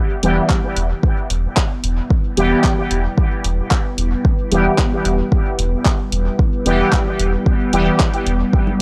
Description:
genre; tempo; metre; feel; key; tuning
dub techno; 112 BPM; 4/4; straight; E minor; A4 = 439 Hz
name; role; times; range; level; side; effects
deep dark ambient pad; sustained chords; 1.0-8.8 s; G3 to E5; -28 LUFS; equal; chorus, built-in reverb, sidechain pumping
resonant sweep polysynth; stabs; 0.2-7.9 s; E3 to G4; -22 LUFS; equal; chorus, phaser, sidechain pumping, dub echo
round analog bass; bass; 0.2-8.4 s; E1; -22 LUFS; equal; sidechain pumping
deep house drum kit; drums; 0.2-8.4 s; handclaps, hi-hat; -25 LUFS; equal; dub echo
electronic kick drum; drums; 0.5-8.6 s; none; -19 LUFS; equal; none
congas; percussion; 8.7-8.8 s; none; -25 LUFS; equal; overdrive, sidechain pumping on perc
room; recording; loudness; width
digital ambience; dry, gritty hardware recording, transformer saturation; -17 LUFS; mono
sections
0.0-8.8 A section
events
none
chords
0.0 Em

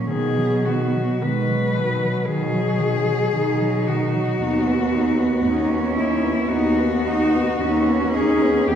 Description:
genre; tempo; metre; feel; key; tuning
classical, lyrical piece for cello ensemble; 52-58 BPM; 4/4; rubato; B major; A4 = 440 Hz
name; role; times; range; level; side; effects
clear cello; second line; 0.0-8.8 s; F#3 to D#4; -23 LUFS; right 4 dB; none
rich cello; accompaniment; 0.0-8.7 s; D#3 to D#4; -24 LUFS; left 1 dB; none
clear cello; melody; 0.1-8.8 s; E4 to B4; -24 LUFS; left 4 dB; none
clear cello; bass; 0.1-8.8 s; D#2 to B2; -24 LUFS; equal; none
room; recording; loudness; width
wet recital hall reverb, RT60 1.6 s; heard from further back in the room; -18 LUFS; side -8 dB against mid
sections
0.0-8.8 A section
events
none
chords
0.1 B; 4.4 B/D#

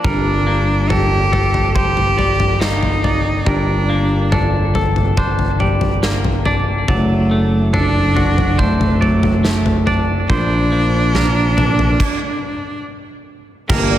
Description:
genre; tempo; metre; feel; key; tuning
post-rock; 70 BPM; 4/4; straight; G minor; A4 = 437 Hz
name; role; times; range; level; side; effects
bright cello; melody; 0.0-14.0 s; A3 to G4; -18 LUFS; right 1 dB; digital delay
twangy electric guitar; arpeggios; 0.0-14.0 s; G2 to A4; -23 LUFS; left 3 dB; digital delay
twangy electric guitar; arpeggios; 0.0-14.0 s; A4 to D5; -26 LUFS; right 5 dB; spring reverb, digital delay
modern bright picked electric bass; bass; 0.0-14.0 s; F#1 to Bb1; -18 LUFS; equal; none
huge arena drum kit; drums; 0.0-13.9 s; crash cymbal, kick drum, snare drum, toms; -20 LUFS; left 1 dB; none
phased analog pad; sustained chords; 13.7-14.0 s; G4 to A5; -23 LUFS; right 12 dB; phaser, chorus
room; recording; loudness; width
light reverb, small room ambience; none; -13 LUFS; side -12 dB against mid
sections
0.0-13.7 A section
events
stop 12.0-13.7; drum fill 13.7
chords
0.0 Gmadd9; 6.9 D/F#; 10.3 Bb

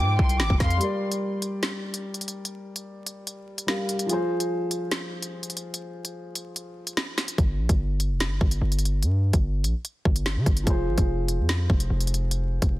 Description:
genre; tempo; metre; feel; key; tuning
hip hop, drill; 146 BPM; 4/4; half-time; G phrygian; A4 = 440 Hz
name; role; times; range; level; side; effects
warm studio violin section; melody; 0.0-0.8 s; C6 to D6; -32 LUFS; left 2 dB; digital delay
silver concert flute; second line; 0.0-0.8 s; F5 to G5; -31 LUFS; equal; digital delay
dark grand piano; accompaniment; 0.0-7.4, 10.6-12.8 s; F3 to F5; -30 LUFS; left 1 dB; none
sweeping resonant pad; sustained chords; 0.0-0.8 s; C3 to F4; -42 LUFS; right 2 dB; none
hard-hitting 808-style bass; bass; 0.0-0.8, 7.4-12.8 s; F1 to D3; -24 LUFS; equal; none
drill drum kit; drums; 0.2-12.7 s; hi-hat, kick drum, rim click, snare drum; -25 LUFS; equal; none
room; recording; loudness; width
small room ambience; dense, heavily limited modern master, vinyl crackle; -23 LUFS; side -17 dB against mid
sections
0.8-12.8 A section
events
break 0.8-7.4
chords
0.0 Fm; 0.8 Gm; 4.1 Fm; 7.4 N.C.; 10.7 Fm

